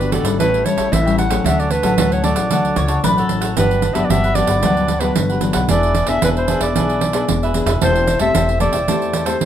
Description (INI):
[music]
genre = samba and choro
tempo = 113 BPM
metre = 4/4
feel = straight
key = D major, G major from 3.6 s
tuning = A4 = 440 Hz
[part]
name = clear clarinet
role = melody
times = 0.0-9.5 s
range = A4 to F#5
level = -19 LUFS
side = equal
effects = none
[part]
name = cavaquinho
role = accompaniment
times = 0.0-9.4 s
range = D4 to G5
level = -24 LUFS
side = right 2 dB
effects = none
[part]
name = nylon-string guitar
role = accompaniment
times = 0.0-9.5 s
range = G2 to G#4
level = -21 LUFS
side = left 5 dB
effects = none
[part]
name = upright bass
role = bass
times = 0.0-9.5 s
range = E1 to E2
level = -21 LUFS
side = equal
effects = none
[part]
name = pandeiro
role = percussion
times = 0.0-9.5 s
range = none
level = -21 LUFS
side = right 6 dB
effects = none
[part]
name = mandolin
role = second line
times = 2.8-3.6 s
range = A4 to C#5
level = -21 LUFS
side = left 2 dB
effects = none
[sound]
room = moderate studio ambience, RT60 0.5 s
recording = none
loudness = -14 LUFS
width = side -10 dB against mid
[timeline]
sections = 0.0-3.6 A section; 3.6-9.5 B section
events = none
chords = 0.4 A7; 1.5 Dmaj7; 3.6 Gmaj7; 5.7 E7; 7.8 Am7/E